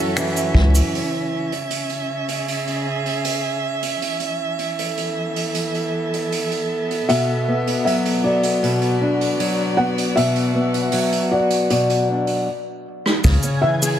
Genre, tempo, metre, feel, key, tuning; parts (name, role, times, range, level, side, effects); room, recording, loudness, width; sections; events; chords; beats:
folktronica; 78 BPM; 4/4; straight; A4 = 440 Hz
felt-muted upright piano; melody; 0.0-0.5, 7.1-13.7 s; D5 to F#5; -23 LUFS; equal; digital delay
warm string quartet; sustained chords; 0.0-14.0 s; B2 to E5; -24 LUFS; right 2 dB
fingerpicked acoustic archtop guitar; arpeggios; 0.0-1.5, 7.1-14.0 s; F#2 to G#4; -20 LUFS; left 1 dB; digital delay
vintage brush drum kit; drums; 0.2-14.0 s; cabasa, finger snaps, hi-hat, rim click; -26 LUFS; right 3 dB
round analog bass; bass; 0.5-0.8, 13.2-13.4 s; C#2; -14 LUFS; equal; tube saturation
kick drum; drums; 0.5-0.7, 13.2-13.4 s; -20 LUFS; equal
flickering grainy texture; texture; 13.4-14.0 s; G#5 to G#6; -27 LUFS; left 3 dB; built-in reverb
light reverb, small room ambience; -18 LUFS; side -10 dB against mid
0.9-13.2 A section
band accent 0.2-0.6; stop 12.5-13.2; drum fill 12.9-13.2
0.0 F#m7; 0.9 C#m; 4.0 Esus4; 7.1 Bm; 13.2 C#m
0.17 | 0.94 1.71 2.48 3.24 | 4.01 4.78 5.55 6.32 | 7.09 7.86 8.63 9.40 | 10.17 10.94 11.71 12.47 | 13.24